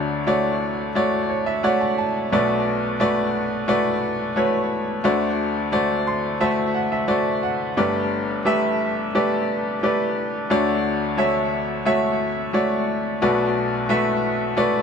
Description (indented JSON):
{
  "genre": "folk",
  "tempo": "88 BPM",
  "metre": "4/4",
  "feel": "straight",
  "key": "unclear",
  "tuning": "A4 = 437 Hz",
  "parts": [
    { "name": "bright upright piano", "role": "solo", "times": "0.0-14.8 s", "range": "G1 to C6", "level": "-19 LUFS", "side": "equal", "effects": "tape echo" }
  ],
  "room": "light reverb",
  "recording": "close, detailed microphones",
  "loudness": "-19 LUFS",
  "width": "side -6 dB against mid",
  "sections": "0.0-14.8 A section",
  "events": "none",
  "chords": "0.0 Dmaj7; 2.3 Bm7; 5.0 D7; 7.8 Gadd9; 10.5 Dmaj7; 13.2 Bm7"
}